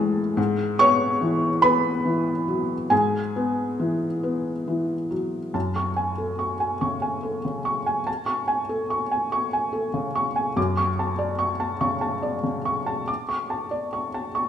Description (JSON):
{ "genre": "neoclassical minimalist piano", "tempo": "47 BPM (dotted quarters)", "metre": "6/8", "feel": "rubato", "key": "F# minor", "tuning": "A4 = 442 Hz", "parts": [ { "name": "felt-muted upright piano", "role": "solo", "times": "0.0-14.5 s", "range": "F#2 to D6", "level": "-22 LUFS", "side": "equal", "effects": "none" } ], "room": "wet large studio reverb, RT60 1.2 s", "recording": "band playing live in one room", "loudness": "-22 LUFS", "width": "side -9 dB against mid", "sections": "0.0-5.5 A section; 5.5-14.5 B section", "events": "none", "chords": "0.4 Eadd9/G#; 5.5 F#madd9; 10.6 Dmaj7/F#" }